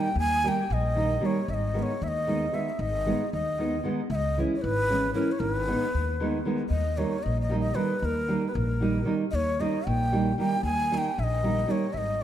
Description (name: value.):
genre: balkan folk, Balkan wedding band.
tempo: 229 BPM (eighths).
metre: 5/8.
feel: straight.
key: unclear.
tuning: A4 = 439 Hz.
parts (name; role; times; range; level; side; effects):
breathy bright ney; melody; 0.0-12.2 s; A#4 to G#5; -29 LUFS; equal; tape echo.
nylon-string guitar; accompaniment; 0.0-12.2 s; D#3 to E4; -29 LUFS; right 2 dB; none.
upright bass; bass; 0.2-12.2 s; G#1 to D#2; -29 LUFS; left 1 dB; none.
room: moderate scoring stage reverb, RT60 1.8 s.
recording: dark, warm production.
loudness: -24 LUFS.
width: side -11 dB against mid.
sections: 0.0-6.7 A section; 6.7-12.2 A section.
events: none.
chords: 0.0 D#; 1.5 G#m; 4.1 C#m; 5.4 G#m; 6.7 D#.